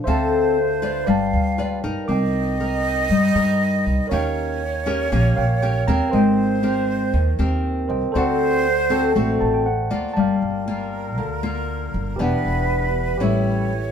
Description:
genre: bossa nova.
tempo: 119 BPM.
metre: 4/4.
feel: straight.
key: G minor.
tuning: A4 = 440 Hz.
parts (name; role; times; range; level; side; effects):
nylon-string guitar; accompaniment; 0.0-13.9 s; A2 to D5; -22 LUFS; left 3 dB; none.
tine electric piano; accompaniment; 0.0-13.9 s; G4 to D6; -27 LUFS; right 3 dB; none.
breathy hollow jazz flute; second line; 0.1-13.9 s; Bb4 to F5; -25 LUFS; right 3 dB; none.
upright bass; bass; 0.1-13.9 s; E1 to G2; -24 LUFS; equal; none.
room: wet studio reverb, RT60 0.5 s.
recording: band playing live in one room.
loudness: -18 LUFS.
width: side -8 dB against mid.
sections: 0.0-10.2 A section; 10.2-13.9 B section.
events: tine electric piano fill 5.1-6.1, 9.2-10.2.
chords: 0.1 Dm7; 1.1 G7; 2.1 Cm9; 4.1 Eb7; 6.1 Abmaj9; 8.1 D7; 10.2 Gm9; 12.2 Em7; 13.2 A7.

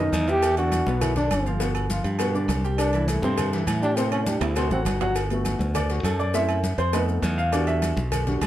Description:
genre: Afro-Cuban jazz.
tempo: 203 BPM.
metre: 4/4.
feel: straight.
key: G major.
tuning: A4 = 440 Hz.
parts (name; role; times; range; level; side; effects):
mellow trombone; melody; 0.0-4.8 s; A3 to G4; -25 LUFS; equal; none.
warm baby grand piano; accompaniment; 0.0-8.4 s; B2 to G5; -27 LUFS; equal; none.
modern bright fingered electric bass; bass; 0.0-8.5 s; G1 to A2; -25 LUFS; equal; none.
agogo bells and timbales; percussion; 0.1-8.5 s; none; -32 LUFS; right 5 dB; none.
congas; percussion; 0.1-8.5 s; none; -32 LUFS; left 1 dB; none.
cowbell; percussion; 0.1-8.5 s; none; -33 LUFS; left 4 dB; none.
maracas; percussion; 0.1-8.5 s; none; -40 LUFS; left 6 dB; none.
room: light reverb.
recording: none.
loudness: -21 LUFS.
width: side -13 dB against mid.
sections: 0.0-5.2 A section; 5.2-8.5 A section.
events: drum fill 0.0-0.4, 4.4-5.2; trombone solo 0.0-5.2; grand piano solo 5.2-8.5.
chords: 0.4 Em9; 1.6 G7; 2.8 C69; 4.0 Am7; 4.6 D7; 5.2 Gmaj7; 6.3 F#m7b5; 6.9 F7#11; 7.5 Em7.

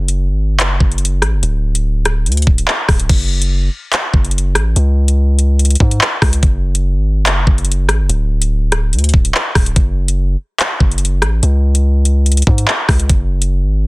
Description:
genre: hip hop, drill.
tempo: 144 BPM.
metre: 4/4.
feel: half-time.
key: F# minor.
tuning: A4 = 440 Hz.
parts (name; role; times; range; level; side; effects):
long sustained 808-style bass; bass; 0.0-13.9 s; D1 to G#2; -13 LUFS; equal; none.
drill drum kit; drums; 0.1-13.5 s; crash cymbal, handclaps, hi-hat, kick drum, rim click; -14 LUFS; equal; vintage 12-bit sampler grit.
room: little or no reverb.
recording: dense, heavily limited modern master.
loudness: -12 LUFS.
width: side -22 dB against mid.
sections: 0.0-3.1 A section; 3.1-13.9 B section.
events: none.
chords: none.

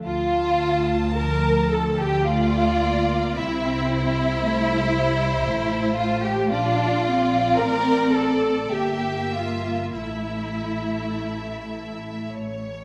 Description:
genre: classical, slow romantic movement for string orchestra.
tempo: 47-58 BPM.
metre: 3/4.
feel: rubato.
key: D minor.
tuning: A4 = 440 Hz.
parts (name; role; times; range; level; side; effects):
warm studio violin section; second line; 0.0-12.3 s; E4 to Bb4; -27 LUFS; equal; none.
dark studio cello section; bass; 0.0-12.8 s; F3 to D4; -29 LUFS; equal; none.
rich studio double bass section; bass; 0.0-12.8 s; G1 to D2; -30 LUFS; equal; none.
rich studio violin section; melody; 0.1-12.8 s; C5 to A5; -35 LUFS; equal; none.
rich studio viola section; accompaniment; 0.1-12.3 s; E4 to Bb4; -31 LUFS; equal; none.
room: wet scoring stage reverb, RT60 1.5 s.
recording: none.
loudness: -23 LUFS.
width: mono.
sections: 0.0-12.8 A section.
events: none.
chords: 0.0 Dm; 3.4 Am/C; 6.5 Bb; 8.7 Edim/G; 10.0 A5; 12.3 A.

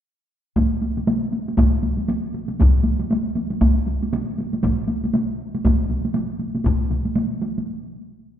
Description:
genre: japanese traditional, taiko drum ensemble.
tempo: 118 BPM.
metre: 4/4.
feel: swing 60% on 16ths.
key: none.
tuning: none.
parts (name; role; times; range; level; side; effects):
taiko ensemble; percussion; 0.6-7.7 s; none; -22 LUFS; right 1 dB; none.
taiko ensemble; percussion; 0.6-6.8 s; none; -20 LUFS; equal; none.
room: wet scoring stage reverb, RT60 1.6 s.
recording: minimal, uncompressed stereo recording.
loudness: -19 LUFS.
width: side -10 dB against mid.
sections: 0.6-8.4 A section.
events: break 7.7-8.4.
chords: none.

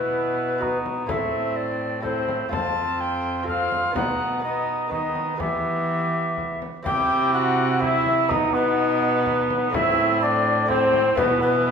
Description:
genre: classical, renaissance-style consort dance.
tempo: 125 BPM.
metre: 3/4.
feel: straight.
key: unclear.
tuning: A4 = 440 Hz.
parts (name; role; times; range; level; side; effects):
tenor recorder; melody; 0.0-11.7 s; B4 to A5; -24 LUFS; left 4 dB; none.
dark cor anglais; second line; 0.0-11.7 s; B3 to G4; -25 LUFS; right 2 dB; none.
lute; accompaniment; 0.0-11.7 s; F2 to B4; -32 LUFS; right 4 dB; none.
warm viola; accompaniment; 0.0-11.7 s; E3 to E4; -30 LUFS; left 2 dB; none.
rich cello; bass; 0.0-11.7 s; F2 to E3; -28 LUFS; right 2 dB; none.
frame drum; percussion; 0.6-11.4 s; none; -34 LUFS; left 4 dB; none.
room: wet recital hall reverb, RT60 1.7 s.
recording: minimal, uncompressed stereo recording.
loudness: -20 LUFS.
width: side -6 dB against mid.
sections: 0.0-6.9 A section; 6.9-11.7 A section.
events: none.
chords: 0.0 Bsus4; 0.6 B; 1.1 Am; 2.5 F; 4.0 B; 5.4 Em; 6.9 C; 8.3 B; 9.7 Am; 11.2 Bsus4.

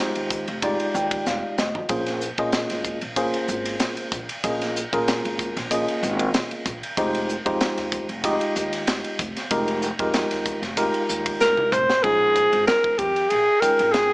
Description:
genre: electric jazz fusion.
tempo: 95 BPM.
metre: 4/4.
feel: swing 54% on 16ths.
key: Bb dorian.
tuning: A4 = 440 Hz.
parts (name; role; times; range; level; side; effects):
tine electric piano; accompaniment; 0.0-14.1 s; Ab3 to G5; -25 LUFS; equal; overdrive, fast stereo tremolo.
upright bass; bass; 0.0-14.1 s; F1 to Bb2; -32 LUFS; equal; none.
crisp fusion drum kit; drums; 0.2-14.1 s; hi-hat, kick drum, ride cymbal, snare drum, toms; -26 LUFS; equal; none.
breathy alto saxophone; melody; 11.4-14.1 s; G4 to C5; -17 LUFS; equal; none.
room: moderate large studio reverb, RT60 1.1 s, small room ambience.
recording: small speaker sound.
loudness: -20 LUFS.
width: side -26 dB against mid.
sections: 0.0-12.0 A section; 12.0-14.1 B section.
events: tine electric piano fill 0.6-1.9; drum fill 1.3-1.9, 11.4-12.0.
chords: 0.0 Fm9; 1.9 Bbm9; 7.0 Fm9; 12.0 Bbm11.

